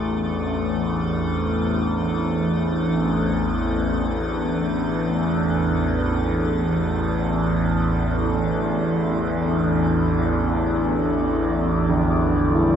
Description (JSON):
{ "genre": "dark ambient drone", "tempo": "free time", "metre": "none", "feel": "none", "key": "unclear", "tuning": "A4 = 440 Hz", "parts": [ { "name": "deep dark ambient pad", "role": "sustained chords", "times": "0.0-12.8 s", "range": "D4 to D5", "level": "-26 LUFS", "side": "equal", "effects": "chorus, built-in reverb, shimmer reverb" }, { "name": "carillon bells", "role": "arpeggios", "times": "0.0-3.4, 11.9-12.8 s", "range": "D3 to G4", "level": "-24 LUFS", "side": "right 2 dB", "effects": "none" }, { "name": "overtone-sweeping drone", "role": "drone", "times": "0.0-12.8 s", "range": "A1 to E2", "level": "-21 LUFS", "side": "equal", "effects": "chorus, built-in reverb, phaser" }, { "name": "icy glass pad", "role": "texture", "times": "0.0-12.8 s", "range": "A3 to A4", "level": "-29 LUFS", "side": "left 3 dB", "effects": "chorus, built-in reverb" } ], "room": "wet cathedral reverb, RT60 5.6 s", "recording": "dark, warm production", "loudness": "-19 LUFS", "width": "side -8 dB against mid", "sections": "0.0-12.8 A section", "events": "fade-in on ambient pad 0.0-12.8; fade-out on ambient pad 0.0-12.8", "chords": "0.0 Am", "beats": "free time" }